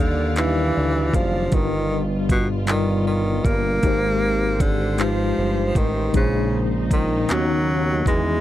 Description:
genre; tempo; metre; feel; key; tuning
slow six-eight R&B; 52 BPM (dotted quarters); 6/8; straight; unclear; A4 = 438 Hz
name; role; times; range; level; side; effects
clear tenor saxophone; melody; 0.0-8.4 s; B2 to Bb3; -23 LUFS; equal; none
mellow tine electric piano; accompaniment; 0.0-8.4 s; Bb2 to F5; -25 LUFS; left 2 dB; medium stereo tremolo
warm studio string section; sustained chords; 0.0-8.4 s; B2 to F5; -32 LUFS; right 2 dB; none
fat analog bass; bass; 0.0-8.4 s; F#1 to E2; -24 LUFS; equal; none
smooth R&B drum kit; drums; 0.4-8.2 s; handclaps, hi-hat, kick drum; -21 LUFS; equal; none
room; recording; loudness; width
little or no reverb; dry, close 1970s-style studio recording; -18 LUFS; side -13 dB against mid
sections
0.0-8.4 A section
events
none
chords
0.0 Ebmaj9; 1.5 G7b13; 3.8 Abmaj7; 6.1 Bbm11; 7.3 Emaj13/D#

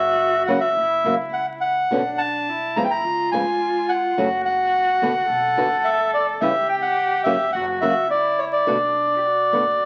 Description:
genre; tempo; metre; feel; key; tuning
tango; 106 BPM; 4/4; rubato; B minor; A4 = 440 Hz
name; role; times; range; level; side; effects
bandoneon; melody; 0.0-9.9 s; C#5 to A#5; -22 LUFS; equal; none
warm cello; second line; 0.0-9.8 s; D4 to A4; -28 LUFS; equal; none
upright bass; bass; 0.0-9.8 s; F#1 to C#2; -44 LUFS; equal; none
flamenco guitar; accompaniment; 0.5-9.6 s; B2 to G#4; -26 LUFS; equal; none
room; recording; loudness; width
moderate studio reverb, RT60 0.8 s; very old 78 rpm record, vinyl crackle; -21 LUFS; mono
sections
0.0-9.9 A section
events
none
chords
0.0 F#5; 1.9 Bmadd9; 3.1 C#; 4.2 F#5; 5.3 Bm; 6.4 C#dim; 7.5 F#5; 8.7 Bm7

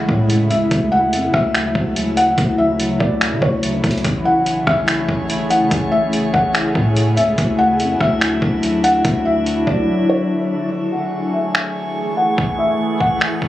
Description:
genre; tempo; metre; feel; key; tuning
hip hop, atmospheric cloud-rap; 144 BPM; 4/4; half-time; A major; A4 = 440 Hz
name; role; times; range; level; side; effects
shimmering ambient pad; sustained chords; 0.0-13.5 s; C#3 to G#4; -21 LUFS; equal; chorus, built-in reverb, sidechain pumping, low-pass filter
long sustained 808-style bass; bass; 0.0-9.9 s; A1 to D3; -20 LUFS; left 1 dB; none
trip hop sampler-style drum kit; drums; 0.1-13.5 s; finger snaps, hi-hat, kick drum, rim click; -21 LUFS; equal; none
felt-muted upright piano; melody; 0.5-13.2 s; C#5 to F#5; -19 LUFS; left 1 dB; low-pass filter, ping-pong delay
drifting glass-harmonics texture; texture; 4.4-13.5 s; A3 to C#6; -26 LUFS; right 1 dB; chorus, built-in reverb
room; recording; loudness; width
light reverb, digital ambience; recorded on a phone in the room, club reverb; -15 LUFS; side -14 dB against mid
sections
0.0-10.7 A section; 10.7-13.5 B section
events
drums muted 9.9-10.7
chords
0.0 Amaj7; 0.7 Dmaj9; 4.0 Amaj7; 7.4 Dadd9; 10.7 Amaj7

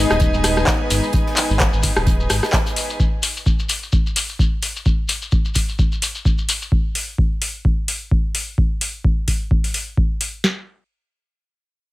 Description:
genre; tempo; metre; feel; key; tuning
acid house; 129 BPM; 4/4; swing 56% on 16ths; unclear; A4 = 441 Hz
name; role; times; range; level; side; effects
dark analog pad; sustained chords; 0.0-3.0 s; Ab3 to Cb5; -27 LUFS; equal; chorus, sidechain pumping
round analog bass; bass; 0.0-2.4 s; Eb1 to Ab1; -21 LUFS; equal; sidechain pumping
clear studio string section; texture; 0.0-3.0 s; Eb4 to Ab5; -24 LUFS; equal; sidechain pumping
booming analog drum machine; drums; 0.1-10.3 s; handclaps, hi-hat, rim click; -22 LUFS; left 1 dB; none
modern studio drum kit; drums; 0.1-2.8 s; hi-hat, snare drum; -32 LUFS; right 2 dB; sidechain pumping on hats, high-pass filter on hats, high-pass filter on snare, high-pass filter on room
shekere; percussion; 0.1-6.7 s; none; -26 LUFS; left 3 dB; none
booming analog drum machine; drums; 0.2-10.6 s; kick drum, snare drum; -18 LUFS; equal; none
room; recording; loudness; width
small room ambience; none; -17 LUFS; side -18 dB against mid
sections
0.0-10.4 A section; 10.4-11.9 B section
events
none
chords
0.0 Abm; 10.4 N.C.

